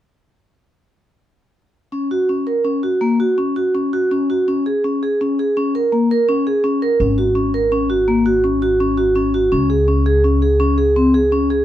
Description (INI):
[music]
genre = contemporary instrumental, contemporary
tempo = 166 BPM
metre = 7/4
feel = straight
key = unclear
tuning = A4 = 440 Hz
[part]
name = vibraphone with medium mallets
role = arpeggios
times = 1.9-11.6 s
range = Bb3 to Bb4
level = -15 LUFS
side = equal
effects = none
[part]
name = upright bass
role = bass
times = 7.0-11.6 s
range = Ab1 to Db2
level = -20 LUFS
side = equal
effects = none
[sound]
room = moderate studio reverb, RT60 0.7 s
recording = dark, warm production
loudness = -14 LUFS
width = side -12 dB against mid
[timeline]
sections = 1.9-11.6 A section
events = none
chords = 1.9 Bbm; 4.5 Bbm7; 7.0 Ab7sus4; 9.5 Db5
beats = | 1.93 2.29 2.65 3.02 3.38 3.74 4.11 | 4.47 4.83 5.19 5.55 5.92 6.28 6.64 | 7.00 7.36 7.72 8.08 8.44 8.80 9.16 | 9.52 9.88 10.24 10.60 10.96 11.32